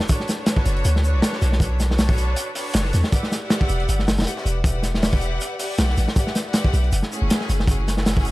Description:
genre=drum and bass, jungle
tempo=158 BPM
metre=4/4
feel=swing 55% on 16ths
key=B minor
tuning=A4 = 440 Hz
part: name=clear studio string section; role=sustained chords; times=0.0-8.3 s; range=A3 to F#5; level=-28 LUFS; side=equal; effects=none
part: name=crunchy breakbeat drum kit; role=drums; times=0.0-8.3 s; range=hi-hat, kick drum, snare drum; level=-21 LUFS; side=equal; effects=none
part: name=crunchy breakbeat drum kit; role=drums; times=0.0-8.3 s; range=hi-hat, shaker, snare drum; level=-35 LUFS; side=left 1 dB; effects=high-pass filter on hats, high-pass filter on snare, high-pass filter on perc, high-pass filter on room
part: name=long sustained 808-style bass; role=bass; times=0.7-8.3 s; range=E1 to E2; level=-20 LUFS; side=equal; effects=none
room=small room ambience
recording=none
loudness=-18 LUFS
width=side -18 dB against mid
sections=0.0-8.3 A section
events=none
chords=0.0 Bm9; 3.1 Em9; 6.9 F#m9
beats=| 0.09 0.47 0.85 1.23 | 1.61 1.99 2.37 2.75 | 3.13 3.51 3.89 4.27 | 4.65 5.03 5.41 5.79 | 6.17 6.55 6.93 7.30 | 7.68 8.06

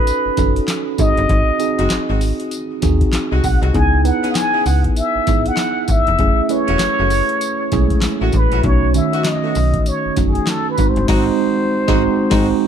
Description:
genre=R&B, new jack swing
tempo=98 BPM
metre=4/4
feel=swing 61% on 16ths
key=unclear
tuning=A4 = 440 Hz
part: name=trumpet with plunger mute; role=melody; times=0.0-12.7 s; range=G#4 to G#5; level=-20 LUFS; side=left 1 dB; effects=digital delay
part: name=tine electric piano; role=accompaniment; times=0.0-12.7 s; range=D#3 to B4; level=-19 LUFS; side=right 4 dB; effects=auto-pan
part: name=booming analog drum machine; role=drums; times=0.1-12.5 s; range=crash cymbal, handclaps, hi-hat, kick drum, snare drum, tambourine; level=-20 LUFS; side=left 1 dB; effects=none
part: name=slap-like FM bass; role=bass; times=0.3-12.5 s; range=E1 to D#2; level=-18 LUFS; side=left 1 dB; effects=none
part: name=mellow horn section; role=stabs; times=1.8-12.5 s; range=G#3 to G#4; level=-27 LUFS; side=left 2 dB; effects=none
room=light reverb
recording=dark, warm production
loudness=-14 LUFS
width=side -8 dB against mid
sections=0.0-12.7 A section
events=band accent 11.1-12.7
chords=0.0 B7; 1.0 G#7; 3.7 C#m7; 6.2 F#m7; 8.6 B7; 10.8 G#7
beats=0.07 0.68 | 1.29 1.90 2.52 3.13 | 3.74 4.35 4.96 5.58 | 6.19 6.80 7.41 8.03 | 8.64 9.25 9.86 10.48 | 11.09 11.70 12.31

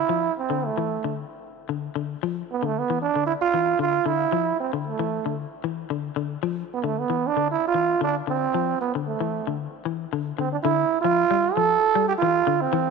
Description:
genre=afrobeat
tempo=114 BPM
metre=4/4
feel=swing 55% on 16ths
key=unclear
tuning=A4 = 438 Hz
part: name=growling trombone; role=melody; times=0.0-12.9 s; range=A3 to A4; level=-22 LUFS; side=right 8 dB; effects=none
part: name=clean electric guitar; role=arpeggios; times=0.0-12.9 s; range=D3 to G3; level=-28 LUFS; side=left 13 dB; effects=none
room=moderate plate reverb, RT60 3.4 s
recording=1960s-style stereo with parts hard left and right, faint mains hum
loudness=-22 LUFS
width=side -4 dB against mid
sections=0.0-10.6 A section; 10.6-12.9 B section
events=none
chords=0.0 Dsus2; 10.6 G5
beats=| 0.10 0.62 1.15 1.68 | 2.21 2.74 3.27 3.79 | 4.32 4.85 5.38 5.91 | 6.43 6.96 7.49 8.01 | 8.54 9.06 9.59 10.11 | 10.64 11.16 11.68 12.21 | 12.73

